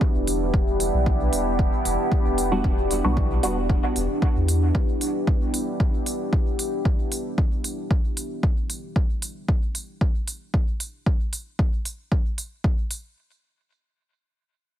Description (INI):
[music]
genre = dub techno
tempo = 114 BPM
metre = 4/4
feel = straight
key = E minor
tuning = A4 = 441 Hz
[part]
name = deep dark ambient pad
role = sustained chords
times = 0.0-8.9 s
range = B3 to G4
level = -26 LUFS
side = equal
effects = chorus, built-in reverb, sidechain pumping
[part]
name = electronic kick drum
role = drums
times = 0.0-12.8 s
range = none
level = -22 LUFS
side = equal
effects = none
[part]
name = warm sub bass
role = bass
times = 0.2-4.7 s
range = E1 to E2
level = -25 LUFS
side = equal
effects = sidechain pumping
[part]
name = electronic hi-hat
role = drums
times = 0.3-13.0 s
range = none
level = -29 LUFS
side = right 2 dB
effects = none
[part]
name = filtered dub chord stab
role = stabs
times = 2.5-3.6 s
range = G3 to F#4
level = -28 LUFS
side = equal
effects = phaser, sidechain pumping, dub echo
[sound]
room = light reverb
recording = heavily compressed radio sound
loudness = -21 LUFS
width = side -11 dB against mid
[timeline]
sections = 0.0-13.2 A section; 13.2-14.8 B section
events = filter sweep on synth stab 0.0-4.7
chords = 0.0 Em7; 13.2 N.C.